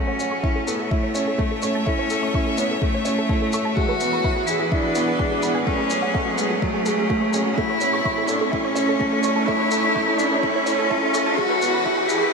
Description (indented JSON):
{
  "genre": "piano and strings electronica",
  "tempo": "126 BPM",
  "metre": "4/4",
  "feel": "straight",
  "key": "A major",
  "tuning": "A4 = 439 Hz",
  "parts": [
    { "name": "clear cello", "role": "melody", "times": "0.0-12.3 s", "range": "A3 to F#4", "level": "-23 LUFS", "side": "left 1 dB", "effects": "ping-pong delay" },
    { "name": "clear string quartet", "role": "sustained chords", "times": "0.0-12.3 s", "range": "A2 to E5", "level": "-28 LUFS", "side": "equal", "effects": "sidechain pumping" },
    { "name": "warbly dusty pluck", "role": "arpeggios", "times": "0.0-12.3 s", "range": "F#4 to C#6", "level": "-29 LUFS", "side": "right 2 dB", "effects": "chorus, vintage 12-bit sampler grit, sidechain pumping, ping-pong delay" },
    { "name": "clear upright piano", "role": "riff", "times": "0.0-12.3 s", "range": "F#3 to A4", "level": "-25 LUFS", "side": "right 1 dB", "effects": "ping-pong delay" },
    { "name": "riser", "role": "sound effects", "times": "2.1-12.3 s", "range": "none", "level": "-31 LUFS", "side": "left 1 dB", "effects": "none" },
    { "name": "shaker", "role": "drums", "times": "0.2-12.2 s", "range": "none", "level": "-35 LUFS", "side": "left 2 dB", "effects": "none" },
    { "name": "electronic kick drum", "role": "drums", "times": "0.4-12.0 s", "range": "none", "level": "-26 LUFS", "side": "equal", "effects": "none" }
  ],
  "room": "wet huge ambient reverb, RT60 7.9 s",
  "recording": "dreamy mix soaked in reverb, high-pass filter",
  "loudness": "-19 LUFS",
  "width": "side -4 dB against mid",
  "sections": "0.0-12.3 A section",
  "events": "build-up 0.0-12.3; riser 2.1-12.3",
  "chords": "0.0 A; 3.8 E; 5.7 F#madd9; 7.6 A; 11.4 E"
}